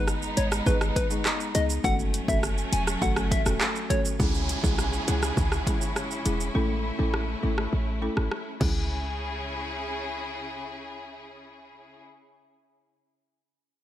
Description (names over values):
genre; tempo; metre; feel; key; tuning
dancehall; 102 BPM; 4/4; straight; C# minor; A4 = 440 Hz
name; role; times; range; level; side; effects
soft struck synth lead; melody; 0.0-4.0 s; B4 to G#5; -31 LUFS; left 2 dB; chorus
folk marimba with medium mallets; accompaniment; 0.0-12.7 s; G#3 to A4; -32 LUFS; left 2 dB; sidechain pumping
clear studio string section; sustained chords; 0.0-12.0 s; C#3 to G#4; -34 LUFS; equal; sidechain pumping
short 808-style bass; bass; 0.0-12.0 s; E1 to C#2; -29 LUFS; equal; none
deep house drum kit; drums; 0.1-8.7 s; crash cymbal, handclaps, hi-hat, kick drum, rim click, shaker; -27 LUFS; equal; overdrive
downlifter; sound effects; 4.2-8.9 s; none; -37 LUFS; right 1 dB; none
room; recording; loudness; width
light reverb; bright 1980s-style digital production; -24 LUFS; side -12 dB against mid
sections
0.0-4.2 A section; 4.2-8.9 B section; 8.9-11.3 C section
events
kick muted 6.5-8.9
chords
0.0 G#m; 1.8 F#m; 4.2 C#m; 6.5 A; 8.6 C#m